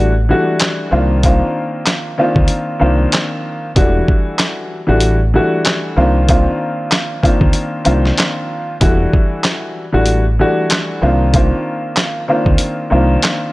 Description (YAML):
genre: hip hop, boom-bap hip-hop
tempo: 95 BPM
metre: 4/4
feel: swing 56% on 16ths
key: unclear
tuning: A4 = 440 Hz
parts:
  - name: warm upright piano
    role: accompaniment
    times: 0.0-13.5 s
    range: Eb3 to F#4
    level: -16 LUFS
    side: left 1 dB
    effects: cassette tape, high-pass filter, low-pass filter
  - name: deep dub fingered electric bass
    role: bass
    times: 0.0-13.2 s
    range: E1 to D2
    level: -14 LUFS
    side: equal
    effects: none
  - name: dusty soul sampler-style drum kit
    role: drums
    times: 0.6-13.4 s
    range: handclaps, hi-hat, kick drum, snare drum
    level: -15 LUFS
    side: equal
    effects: none
room: digital ambience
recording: dry, gritty hardware recording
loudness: -12 LUFS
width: side -19 dB against mid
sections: 0.0-13.5 A section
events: none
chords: 0.0 Em11; 0.9 Cm11; 3.8 Em11; 6.0 Cm11; 8.8 Em11; 11.0 Cm11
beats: 0.60 | 1.23 1.87 2.50 3.13 | 3.76 4.39 5.02 5.66 | 6.29 6.92 7.55 8.18 | 8.81 9.45 10.08 10.71 | 11.34 11.97 12.60 13.23